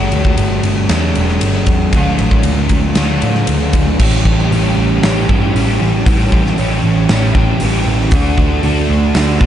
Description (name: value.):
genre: rock, shoegaze and dream pop.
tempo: 116 BPM.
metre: 4/4.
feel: straight.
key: A mixolydian.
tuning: A4 = 440 Hz.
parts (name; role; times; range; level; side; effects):
crunchy overdriven guitar; riff; 0.0-9.5 s; A2 to G4; -15 LUFS; equal; lush chorus.
vintage muted picked electric bass; bass; 0.0-9.5 s; E1 to B2; -16 LUFS; equal; none.
huge arena drum kit; drums; 0.1-9.5 s; crash cymbal, hi-hat, kick drum, ride cymbal, snare drum; -16 LUFS; equal; none.
room: light reverb, small room ambience.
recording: dark, warm production, nothing above 10.8 kHz.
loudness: -11 LUFS.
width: side -10 dB against mid.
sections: 0.0-4.0 A section; 4.0-9.5 B section.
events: none.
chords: 0.0 Gsus2; 1.9 D; 4.0 A7; 8.1 D.